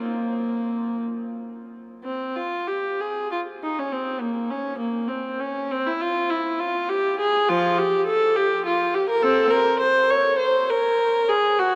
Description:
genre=classical, baroque-style suite movement for unaccompanied viola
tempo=58-69 BPM (dotted quarters)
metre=6/8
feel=rubato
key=F minor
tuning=A4 = 440 Hz
part: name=rich viola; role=solo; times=0.0-11.8 s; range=F3 to Db5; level=-23 LUFS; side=equal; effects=none
room=wet cathedral reverb, RT60 6.4 s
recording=none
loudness=-23 LUFS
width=mono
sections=0.0-2.0 A section; 2.0-11.8 A section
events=none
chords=none

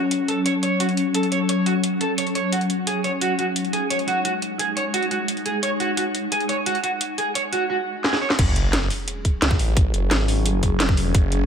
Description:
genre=dark technical drum and bass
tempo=174 BPM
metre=4/4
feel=straight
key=F# minor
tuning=A4 = 440 Hz
part: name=swarming drone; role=sustained chords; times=0.0-11.5 s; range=F#3 to G#4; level=-25 LUFS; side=left 2 dB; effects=built-in reverb, sidechain pumping
part: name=downlifter and sub drop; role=sound effects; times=0.0-0.1, 8.4-9.8 s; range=none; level=-30 LUFS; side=equal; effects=none
part: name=drum and bass drum kit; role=drums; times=0.1-11.4 s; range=crash cymbal, hi-hat, snare drum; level=-25 LUFS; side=equal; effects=none
part: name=electric guitar at the edge of break-up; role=arpeggios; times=0.3-8.3 s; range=F#4 to C#5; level=-24 LUFS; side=right 2 dB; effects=wide subtle chorus, sidechain pumping, low-pass filter, tape echo
part: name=phased detuned saw bass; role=bass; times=8.4-11.5 s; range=F#1 to C#2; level=-21 LUFS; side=equal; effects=phaser, tube saturation, sidechain pumping
part: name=electronic kick drum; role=drums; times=8.4-11.2 s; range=none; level=-19 LUFS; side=equal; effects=none
room=moderate lush hall reverb, RT60 2.1 s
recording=none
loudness=-19 LUFS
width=side -7 dB against mid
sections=0.0-8.4 A section; 8.4-11.5 B section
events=filter sweep on synth drone 0.0-8.4; drum fill 8.0-8.4; drop 8.4-11.5; impact 8.4-9.8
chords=0.0 F#5; 2.9 G#5; 8.4 F#5

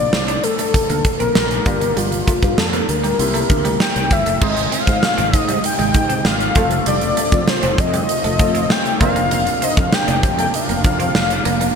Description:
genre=1980s-style pop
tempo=98 BPM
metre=4/4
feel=straight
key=unclear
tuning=A4 = 445 Hz
part: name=wide unison lead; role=melody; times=0.0-11.7 s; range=F4 to G5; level=-20 LUFS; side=left 3 dB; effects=none
part: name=clear baby grand piano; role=accompaniment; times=0.0-11.8 s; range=Ab3 to A5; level=-27 LUFS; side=equal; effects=lush chorus
part: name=sustaining fretless electric bass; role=bass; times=0.0-11.7 s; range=F1 to Ab2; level=-23 LUFS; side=equal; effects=ensemble chorus
part: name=huge arena drum kit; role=drums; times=0.1-11.8 s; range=crash cymbal, hi-hat, kick drum, snare drum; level=-18 LUFS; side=right 1 dB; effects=gated reverb
part: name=twelve-string electric guitar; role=riff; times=0.3-11.7 s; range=G3 to D4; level=-27 LUFS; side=right 4 dB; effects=lush chorus
part: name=sweeping resonant pad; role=sustained chords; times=4.4-11.7 s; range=C3 to F4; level=-26 LUFS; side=right 1 dB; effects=chorus
room=moderate plate reverb, RT60 3.1 s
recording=bright 1980s-style digital production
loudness=-14 LUFS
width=side -6 dB against mid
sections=0.0-4.4 A section; 4.4-11.8 B section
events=none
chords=0.0 Bbmaj7; 1.7 Gm7; 3.2 C7; 4.4 Ab; 6.6 F; 9.0 Bbadd9/F

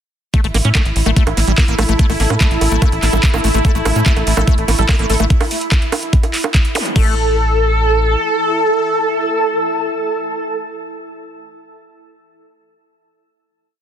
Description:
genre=psychedelic trance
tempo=145 BPM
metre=4/4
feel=straight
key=unclear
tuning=A4 = 440 Hz
part: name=bubbling stepped-filter texture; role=sustained chords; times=0.3-7.0 s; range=E4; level=-24 LUFS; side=right 1 dB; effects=chorus, built-in reverb, sidechain pumping
part: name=liquid acid bass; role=riff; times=0.3-7.2 s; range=G3 to C#4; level=-23 LUFS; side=moving between left 8 dB and right 3 dB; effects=chorus, auto-pan, sidechain pumping, ping-pong delay
part: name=electronic kick drum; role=drums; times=0.3-7.0 s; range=none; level=-14 LUFS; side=equal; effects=overdrive
part: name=garage drum kit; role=drums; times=0.3-7.0 s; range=bongos, crash cymbal, handclaps, hi-hat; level=-20 LUFS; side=right 3 dB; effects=overdrive
part: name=granular cloud pad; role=texture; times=1.8-10.7 s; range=E4 to E6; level=-24 LUFS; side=right 1 dB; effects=built-in reverb, sidechain pumping
part: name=tight sequencer bass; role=bass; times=0.4-8.2 s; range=A1 to A2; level=-16 LUFS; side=equal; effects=tube saturation
part: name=wide unison lead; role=melody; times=3.6-10.6 s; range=A3 to A4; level=-18 LUFS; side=equal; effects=phaser, sidechain pumping, ping-pong delay
part: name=vowel-sweep wobble bass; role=second line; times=4.4-4.5 s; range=none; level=barely audible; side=none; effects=none
part: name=zap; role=sound effects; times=6.8-6.9 s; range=none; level=-23 LUFS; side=equal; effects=none
room=digital ambience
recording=dense, heavily limited modern master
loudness=-13 LUFS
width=side -9 dB against mid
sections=0.3-7.0 drop; 7.0-10.3 final chord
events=drop 0.3-7.0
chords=0.3 A5

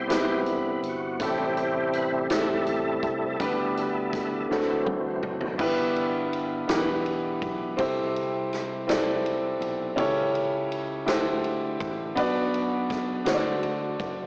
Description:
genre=slow gospel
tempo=55 BPM (dotted quarters)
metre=6/8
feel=straight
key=G major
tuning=A4 = 440 Hz
part: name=clear concert grand piano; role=accompaniment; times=0.0-14.3 s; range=G2 to D5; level=-29 LUFS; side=equal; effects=none
part: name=tonewheel organ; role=sustained chords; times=0.0-5.6 s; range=C3 to C5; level=-32 LUFS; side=equal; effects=slow rotary speaker, overdrive, chorus vibrato
part: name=fingered electric bass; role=bass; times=0.0-14.3 s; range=E1 to D2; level=-40 LUFS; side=equal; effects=none
part: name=swinging big-band drum kit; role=drums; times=0.1-14.2 s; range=crash cymbal, hi-hat, kick drum, ride cymbal, snare drum, toms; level=-35 LUFS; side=equal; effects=cassette tape
room=light reverb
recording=home recording on cassette, small speaker sound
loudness=-27 LUFS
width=mono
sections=0.0-5.6 A section; 5.6-14.3 A section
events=tonewheel organ solo 0.0-5.6; drum fill 4.5-5.6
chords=0.0 Cmaj7; 1.2 Am7; 3.4 G/D; 4.5 D7; 5.6 G6; 6.7 Em7; 7.8 C6; 10.0 A7/C#; 11.1 D9sus4; 12.2 Bm; 13.3 D7

